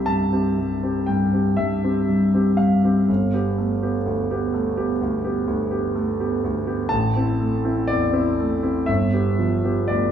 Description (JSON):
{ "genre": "classical, romantic character piece for solo piano", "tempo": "57-64 BPM", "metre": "4/4", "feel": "rubato", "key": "C major", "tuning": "A4 = 443 Hz", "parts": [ { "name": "warm concert grand piano", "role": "solo", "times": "0.0-10.1 s", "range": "G1 to A5", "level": "-19 LUFS", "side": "equal", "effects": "none" } ], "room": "wet recital hall reverb, RT60 1.4 s", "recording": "small room reverb", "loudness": "-19 LUFS", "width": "side -9 dB against mid", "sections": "0.0-10.1 A section", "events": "none", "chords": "0.0 C; 3.1 G9; 6.9 Am; 8.9 G7" }